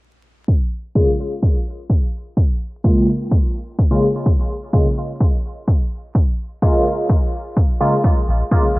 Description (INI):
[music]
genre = dub techno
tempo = 127 BPM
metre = 4/4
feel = straight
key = Bb minor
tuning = A4 = 440 Hz
[part]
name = electronic kick drum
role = drums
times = 0.5-8.6 s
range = none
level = -16 LUFS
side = equal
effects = cassette tape
[part]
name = resonant sweep polysynth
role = stabs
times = 1.0-8.7 s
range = Db3 to F4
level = -19 LUFS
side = equal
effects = chorus, phaser, sidechain pumping, cassette tape, dub echo
[part]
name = round analog bass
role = bass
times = 8.3-8.8 s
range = Bb1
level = -18 LUFS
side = equal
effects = sidechain pumping
[sound]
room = light reverb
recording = home recording on cassette, vinyl crackle, low-pass filter, faint mains hum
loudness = -16 LUFS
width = side -21 dB against mid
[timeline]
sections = 0.5-8.8 A section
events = filter sweep on analog polysynth 0.5-8.8; filter sweep 0.5-8.8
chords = 0.5 Bbm7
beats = | 0.48 0.95 1.43 1.90 | 2.37 2.84 3.32 3.79 | 4.26 4.73 5.21 5.68 | 6.15 6.62 7.09 7.57 | 8.04 8.51